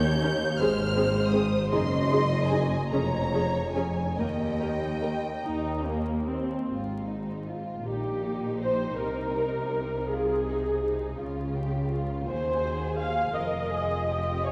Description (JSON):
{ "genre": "classical, slow romantic movement for string orchestra", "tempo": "47-57 BPM (dotted quarters)", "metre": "6/8", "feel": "rubato", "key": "Ab major", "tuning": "A4 = 440 Hz", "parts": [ { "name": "rich studio violin section", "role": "melody", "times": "0.0-14.5 s", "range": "C4 to G6", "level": "-39 LUFS", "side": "equal", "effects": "none" }, { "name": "rich symphonic violin section", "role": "second line", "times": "0.0-14.5 s", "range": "Eb4 to Eb5", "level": "-37 LUFS", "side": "equal", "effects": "none" }, { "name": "rich symphonic cello section", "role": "bass", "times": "0.0-14.5 s", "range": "Eb2 to Db3", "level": "-34 LUFS", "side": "equal", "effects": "none" }, { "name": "rich symphonic double bass section", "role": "bass", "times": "0.0-14.5 s", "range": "F1 to Eb2", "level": "-34 LUFS", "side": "equal", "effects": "none" }, { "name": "warm symphonic viola section", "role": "accompaniment", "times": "0.2-14.5 s", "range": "Bb3 to F5", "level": "-32 LUFS", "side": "equal", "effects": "none" } ], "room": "wet concert hall reverb, RT60 2.6 s", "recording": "vinyl crackle", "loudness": "-28 LUFS", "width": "mono", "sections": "0.0-6.7 A section; 6.7-14.5 B section", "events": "none", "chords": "0.0 Eb7; 0.6 Ab; 1.7 Ab7/Gb; 2.9 Db/F; 4.2 Eb; 6.7 Ab; 7.9 Eb/Bb; 9.0 Ab/C; 11.2 Db; 12.3 Ab7/Eb; 13.3 Db/F (rootless)", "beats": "0.59 | 1.72 2.92 | 4.18 5.44 | 6.68 7.86 | 8.97 10.07 | 11.18 12.28 | 13.34 14.43" }